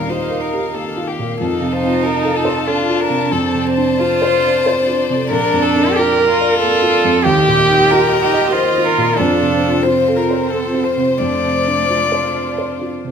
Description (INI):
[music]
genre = neoclassical piano and strings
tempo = 92 BPM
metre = 3/4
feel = uneven beats, rubato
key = unclear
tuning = A4 = 439 Hz
[part]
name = warm violin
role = melody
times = 0.0-12.9 s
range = F4 to D5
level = -18 LUFS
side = left 5 dB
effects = none
[part]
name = dark cello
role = second line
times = 0.0-12.5 s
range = A3 to Bb4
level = -18 LUFS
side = right 5 dB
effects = none
[part]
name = felt-muted upright piano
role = accompaniment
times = 0.0-13.1 s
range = Bb1 to Eb5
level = -19 LUFS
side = right 2 dB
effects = none
[part]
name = dark studio string section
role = sustained chords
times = 0.0-13.1 s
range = Bb3 to A5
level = -24 LUFS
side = left 2 dB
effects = none
[part]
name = vibraphone with soft mallets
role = arpeggios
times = 0.2-12.9 s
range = D4 to Bb5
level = -26 LUFS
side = left 4 dB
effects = none
[sound]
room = wet large studio reverb, RT60 1.5 s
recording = minimal, uncompressed stereo recording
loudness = -13 LUFS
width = side -7 dB against mid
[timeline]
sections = 0.0-13.1 A section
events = none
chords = 0.0 Ebadd9; 1.4 F; 3.3 Dm7/F; 5.3 Bb; 7.2 Ebadd9; 9.2 F; 11.2 Dm7/F